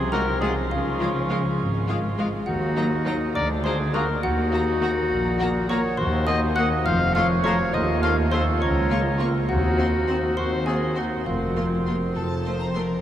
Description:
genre	cinematic, playful, whimsical film cue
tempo	68 BPM (dotted quarters)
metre	6/8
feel	straight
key	unclear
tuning	A4 = 439 Hz
part	xylophone with rubber mallets	melody	0.0-12.7 s	F5 to Gb6	-34 LUFS	right 2 dB	none
part	warm oboe	second line	0.0-12.7 s	C4 to Eb5	-31 LUFS	right 3 dB	none
part	concert harp	arpeggios	0.0-13.0 s	C3 to C6	-30 LUFS	equal	none
part	clear chamber double bass section	bass	0.0-12.9 s	F1 to Eb2	-27 LUFS	equal	none
part	warm chamber cello section	bass	0.0-12.9 s	Db2 to Db3	-29 LUFS	equal	none
part	clear chamber violin section	melody	0.1-12.8 s	F5 to Db6	-40 LUFS	left 2 dB	none
part	bright clarinet	second line	0.1-12.8 s	F4 to Gb5	-27 LUFS	left 3 dB	none
part	rich chamber violin section	second line	0.1-13.0 s	Eb4 to C5	-36 LUFS	right 1 dB	none
part	clear chamber viola section	accompaniment	0.1-12.8 s	Gb3 to C4	-33 LUFS	left 2 dB	none
part	mellow French horn section	sustained chords	0.1-12.7 s	Ab3 to Bb4	-31 LUFS	right 1 dB	none
room	wet huge ambient reverb, RT60 7.7 s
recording	in a vast, echoing space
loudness	-20 LUFS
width	side -11 dB against mid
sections	0.0-13.0 A section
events	none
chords	0.0 Ab7/C; 0.7 Db; 2.5 Ebm; 3.4 Bb7/D; 4.2 Ebm; 6.0 Cm7b5/Eb; 6.9 F; 7.7 F7/Eb; 8.6 Bbm/Db; 9.5 Cdim/Eb; 11.3 Fsus4; 12.2 F

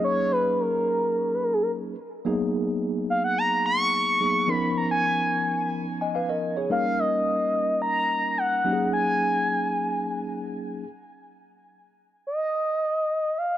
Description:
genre	funk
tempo	108 BPM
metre	4/4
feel	straight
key	unclear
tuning	A4 = 440 Hz
part	expressive synth lead	melody	0.0-13.6 s	G#4 to C#6	-24 LUFS	equal	chorus, tape echo
part	tine electric piano	accompaniment	0.0-10.9 s	E#3 to G#5	-27 LUFS	equal	medium stereo tremolo
room	light reverb, digital ambience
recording	none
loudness	-22 LUFS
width	side -12 dB against mid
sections	0.0-11.2 A section; 11.2-13.6 B section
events	none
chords	0.0 F#69; 2.3 G#m9; 4.5 C#13; 6.7 D#7; 8.7 F#69; 11.2 N.C.

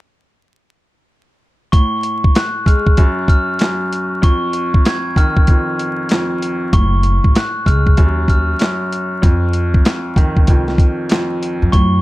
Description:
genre	hip hop, boom-bap hip-hop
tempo	96 BPM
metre	4/4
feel	swing 62% on 16ths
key	unclear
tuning	A4 = 439 Hz
part	glockenspiel with rubber mallets	melody	1.7-12.0 s	C#6 to Ab6	-21 LUFS	left 1 dB	high-pass filter, low-pass filter, plate reverb
part	warm concert grand piano	accompaniment	1.7-12.0 s	F2 to G#3	-21 LUFS	equal	cassette tape, high-pass filter, low-pass filter, plate reverb
part	boom bap sampler-style drum kit	drums	1.7-11.9 s	handclaps, hi-hat, kick drum, snare drum	-12 LUFS	equal	vintage 12-bit sampler grit
part	upright bass	bass	6.7-12.0 s	Gb1 to Gb2	-16 LUFS	equal	none
room	light reverb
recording	vinyl crackle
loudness	-13 LUFS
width	side -18 dB against mid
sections	1.7-11.7 A section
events	none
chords	1.7 Amaj7#5; 3.0 N.C.; 4.2 Dbadd9/F; 6.7 Gbmadd9; 8.0 Ebmadd9; 9.2 Cmadd11 (rootless)

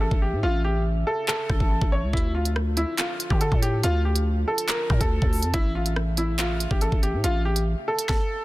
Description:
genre	hip hop, drill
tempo	141 BPM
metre	4/4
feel	half-time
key	D harmonic minor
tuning	A4 = 441 Hz
part	clear upright piano	melody	0.0-8.4 s	E4 to C#5	-27 LUFS	equal	ping-pong delay
part	dark French horn section	sustained chords	0.0-8.1 s	C#3 to E5	-38 LUFS	right 1 dB	none
part	growling 808-style bass	bass	0.0-7.8 s	A1 to D3	-24 LUFS	equal	none
part	drill drum kit	drums	0.1-8.2 s	handclaps, hi-hat, kick drum, rim click, snare drum	-24 LUFS	equal	none
room	small room ambience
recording	dense, heavily limited modern master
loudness	-21 LUFS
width	side -18 dB against mid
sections	0.0-8.4 A section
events	break 0.0-2.1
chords	0.0 A; 2.1 Dm; 5.5 A

